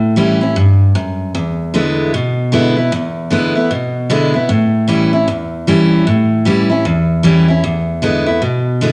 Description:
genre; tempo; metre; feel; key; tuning
rock; 153 BPM; 4/4; swing 62% on 8ths; unclear; A4 = 440 Hz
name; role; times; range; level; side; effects
picked steel-string acoustic guitar; solo; 0.0-8.9 s; E2 to E4; -14 LUFS; equal; none
room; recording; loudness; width
moderate large studio reverb, RT60 1.2 s; none; -14 LUFS; mono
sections
0.0-8.9 A section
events
none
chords
0.0 A7; 1.3 E7; 4.5 A7; 7.6 E7

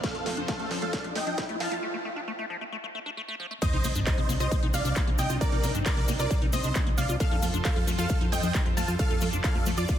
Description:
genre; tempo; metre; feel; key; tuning
uplifting trance; 134 BPM; 4/4; straight; unclear; A4 = 440 Hz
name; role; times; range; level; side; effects
big supersaw lead; melody; 0.0-10.0 s; F4 to A5; -33 LUFS; right 1 dB; phaser, cassette tape, sidechain pumping, dub echo
lush unison pad; sustained chords; 0.0-10.0 s; C3 to D5; -37 LUFS; equal; chorus, sidechain pumping
liquid acid bass; arpeggios; 0.0-9.9 s; F3 to F4; -36 LUFS; left 3 dB; phaser, sidechain pumping, tape echo
electronic kick drum; drums; 0.0-10.0 s; none; -28 LUFS; equal; distortion
techno drum kit; drums; 0.0-10.0 s; crash cymbal, handclaps, hi-hat, snare drum; -36 LUFS; equal; high-pass filter on snare, sidechain pumping on hats, high-pass filter on hats, sidechain pumping on cymbals, high-pass filter on cymbals, high-pass filter on room
riser and impact; sound effects; 0.0-5.4 s; none; -36 LUFS; equal; none
solid FM bass; bass; 0.1-9.9 s; F1 to F2; -31 LUFS; equal; sidechain pumping
analog pluck; second line; 3.6-10.0 s; D5 to A5; -38 LUFS; equal; chorus, sidechain pumping, tape echo
tube shaker; percussion; 3.6-10.0 s; none; -40 LUFS; left 2 dB; none
room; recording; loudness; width
digital ambience; dense, heavily limited modern master, high-pass filter; -25 LUFS; side -10 dB against mid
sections
0.0-3.6 A section; 3.6-10.0 B section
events
build-up 0.0-3.6; drum fill 0.0-1.8; riser 0.0-1.8; filter sweep on acid bass 0.0-3.6; filter sweep 0.0-3.6; break 1.8-3.6; drop 3.6-10.0; impact 3.6-5.4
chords
0.0 F; 3.6 Cmadd9; 7.2 F

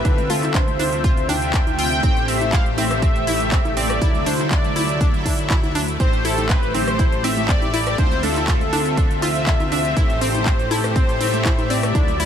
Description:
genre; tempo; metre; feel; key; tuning
progressive house; 121 BPM; 4/4; straight; A minor; A4 = 440 Hz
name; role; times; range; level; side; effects
warm velvety synth lead; melody; 0.0-12.3 s; A4 to G5; -24 LUFS; equal; chorus, tape echo
shimmering ambient pad; sustained chords; 0.0-12.3 s; C3 to E4; -29 LUFS; equal; chorus, built-in reverb, phaser, sidechain pumping
soft supersaw; stabs; 0.0-12.3 s; F#3 to E5; -26 LUFS; left 3 dB; sidechain pumping, tape echo
fat analog bass; bass; 0.0-12.3 s; A1 to D2; -26 LUFS; equal; sidechain pumping
electronic kick drum; drums; 0.0-12.1 s; none; -18 LUFS; equal; studio ambience
analog pluck; arpeggios; 0.1-12.2 s; C4 to F4; -27 LUFS; right 1 dB; chorus, sidechain pumping, tape echo
big-room dance drum kit; drums; 0.1-12.3 s; handclaps, hi-hat; -28 LUFS; right 1 dB; studio ambience
electronic congas and rim click; percussion; 0.1-12.3 s; none; -30 LUFS; left 1 dB; overdrive, sidechain pumping on perc, studio ambience, sidechain pumping on snare
room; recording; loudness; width
little or no reverb; none; -16 LUFS; side -9 dB against mid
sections
0.0-12.3 A section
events
none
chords
0.0 Dm7; 2.0 Am7; 4.0 Dadd9; 6.0 Am7; 8.0 Dm7; 10.0 Am7

